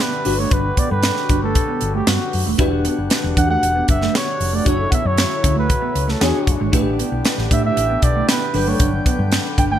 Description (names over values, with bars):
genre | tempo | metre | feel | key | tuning
polished 1980s jazz-funk pop | 116 BPM | 4/4 | straight | unclear | A4 = 440 Hz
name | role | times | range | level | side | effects
breathy flugelhorn | melody | 0.0-9.8 s | F#4 to G5 | -23 LUFS | right 2 dB | ping-pong delay
bell-like FM electric piano | accompaniment | 0.0-9.8 s | F#3 to C#5 | -24 LUFS | left 3 dB | ensemble chorus
mellow accordion | sustained chords | 0.0-9.8 s | C#3 to G5 | -29 LUFS | left 3 dB | none
mellow electric guitar | riff | 0.0-9.8 s | G#3 to E4 | -25 LUFS | right 6 dB | ensemble chorus
crisp fusion drum kit | drums | 0.0-9.7 s | hi-hat, kick drum, snare drum | -19 LUFS | equal | none
hollow-body short-scale fingered electric bass | bass | 0.3-9.8 s | D#1 to A2 | -22 LUFS | equal | none
room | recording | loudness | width
moderate plate reverb, RT60 2.0 s | bright 1980s-style digital production | -15 LUFS | side -10 dB against mid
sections
0.0-9.8 A section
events
none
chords
0.3 Gmaj7; 2.6 Em9; 4.7 Dmaj9/F#; 6.2 E13; 6.7 A9sus4; 8.5 Gmaj7